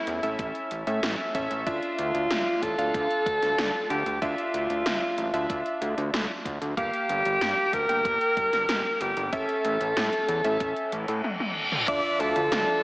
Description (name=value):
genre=synthwave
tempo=94 BPM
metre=4/4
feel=straight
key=D harmonic minor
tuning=A4 = 436 Hz
part: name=breathy alto saxophone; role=melody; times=0.0-12.8 s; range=E4 to D5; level=-26 LUFS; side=equal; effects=slapback echo, tape echo
part: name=bright electric grand piano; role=stabs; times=0.0-12.8 s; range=Bb3 to G5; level=-31 LUFS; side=equal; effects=none
part: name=fat analog bass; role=bass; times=0.1-12.7 s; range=D1 to A2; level=-32 LUFS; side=equal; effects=sidechain pumping
part: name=80s electronic pad drums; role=drums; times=0.1-12.6 s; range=crash cymbal, hi-hat, snare drum, toms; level=-32 LUFS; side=equal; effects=gated reverb on snare and toms, overdrive, slapback echo
part: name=electronic kick drum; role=drums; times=0.4-12.0 s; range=none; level=-36 LUFS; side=equal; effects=none
part: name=reverse cymbal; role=sound effects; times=10.9-11.9 s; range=none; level=-30 LUFS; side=equal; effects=none
part: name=soft synth bell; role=second line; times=11.9-12.8 s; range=A5 to D6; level=-34 LUFS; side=equal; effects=chorus, slapback echo
part: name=analog string pad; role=sustained chords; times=11.9-12.8 s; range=F3 to F4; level=-33 LUFS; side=equal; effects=ensemble chorus, sidechain pumping
room=wet lush hall reverb, RT60 2.0 s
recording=big arena sound, AM radio sound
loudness=-24 LUFS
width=side -23 dB against mid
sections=0.0-11.9 A section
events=reverse cymbal 10.9-11.9; drum fill 11.2-11.9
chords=0.0 A; 1.7 Dmadd9; 6.8 Gm7; 9.3 A; 11.9 Dmadd9